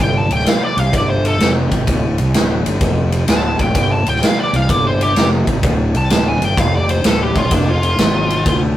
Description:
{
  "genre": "blues rock power trio and southern rock",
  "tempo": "128 BPM",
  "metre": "4/4",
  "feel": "swing 67% on 8ths",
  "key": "D minor",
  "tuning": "A4 = 440 Hz",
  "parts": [
    { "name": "fuzz lead guitar", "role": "melody", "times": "0.0-8.6 s", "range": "D4 to A5", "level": "-19 LUFS", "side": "left 1 dB", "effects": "wah, distortion" },
    { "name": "fuzz fingered electric bass", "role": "bass", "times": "0.0-8.8 s", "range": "D1 to D2", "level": "-17 LUFS", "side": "equal", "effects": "overdrive" },
    { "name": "big rock drum kit", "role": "drums", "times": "0.3-8.6 s", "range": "kick drum, ride cymbal, snare drum", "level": "-16 LUFS", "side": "equal", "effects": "none" }
  ],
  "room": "moderate studio reverb, RT60 0.6 s",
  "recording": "rough rehearsal-room recording, warm saturation",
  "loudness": "-13 LUFS",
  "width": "side -13 dB against mid",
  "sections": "0.0-8.8 A section",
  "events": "lead electric guitar solo 0.0-8.8",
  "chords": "0.0 Dmadd11; 0.9 Gsus24; 1.4 Dm; 2.8 N.C.; 3.3 Dsus4; 4.7 Gsus4; 5.2 Dm; 6.6 Dm7/F; 7.0 Dmadd11; 7.5 Dm/F; 8.0 Fm/Ab"
}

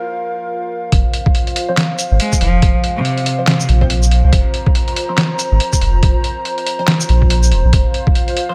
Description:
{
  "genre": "deep dubstep",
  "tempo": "141 BPM",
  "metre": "4/4",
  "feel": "swing 59% on 16ths, half-time",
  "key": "unclear",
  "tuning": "A4 = 444 Hz",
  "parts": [
    { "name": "dark analog pad", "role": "sustained chords", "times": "0.0-8.5 s", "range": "F4 to Bb5", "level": "-24 LUFS", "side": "equal", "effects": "chorus" },
    { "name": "soft dub sub bass", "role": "bass", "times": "0.9-7.8 s", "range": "Eb1 to C2", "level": "-14 LUFS", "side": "equal", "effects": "tube saturation" },
    { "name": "electronic kick drum", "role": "drums", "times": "0.9-8.1 s", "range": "none", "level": "-17 LUFS", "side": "equal", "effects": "overdrive" },
    { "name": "trip hop sampler-style drum kit", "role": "drums", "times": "0.9-8.5 s", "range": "handclaps, hi-hat, shaker, snare drum", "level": "-20 LUFS", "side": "equal", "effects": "none" },
    { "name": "filtered dub chord stab", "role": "stabs", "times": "1.7-8.5 s", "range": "F3 to C5", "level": "-29 LUFS", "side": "equal", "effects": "phaser, lush chorus, dub echo" },
    { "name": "rich cello", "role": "melody", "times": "2.2-3.7 s", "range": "C3 to Ab3", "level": "-24 LUFS", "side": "equal", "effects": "dub echo" }
  ],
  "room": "light reverb, digital ambience",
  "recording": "none",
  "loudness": "-15 LUFS",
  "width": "mono",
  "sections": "0.9-8.5 A section",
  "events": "break 0.0-0.9; drop 0.9-8.5",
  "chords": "0.0 F5"
}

